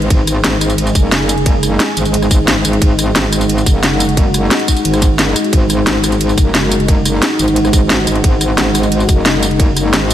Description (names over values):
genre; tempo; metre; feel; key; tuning
dark technical drum and bass; 177 BPM; 4/4; straight; unclear; A4 = 440 Hz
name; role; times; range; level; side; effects
dark analog pad; sustained chords; 0.0-10.1 s; G#3 to G#4; -16 LUFS; equal; chorus, sidechain pumping
metallic wobble bass; bass; 0.0-10.1 s; F#1 to G#1; -16 LUFS; equal; chorus
drum and bass drum kit; drums; 0.0-10.1 s; hi-hat, ride cymbal, rim click, snare drum, tambourine; -16 LUFS; equal; overdrive
electronic kick drum; drums; 0.1-9.7 s; none; -11 LUFS; equal; none
room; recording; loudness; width
moderate lush hall reverb, RT60 1.9 s; dreamy mix soaked in reverb; -10 LUFS; side -11 dB against mid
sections
0.0-10.1 A section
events
none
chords
0.0 G#5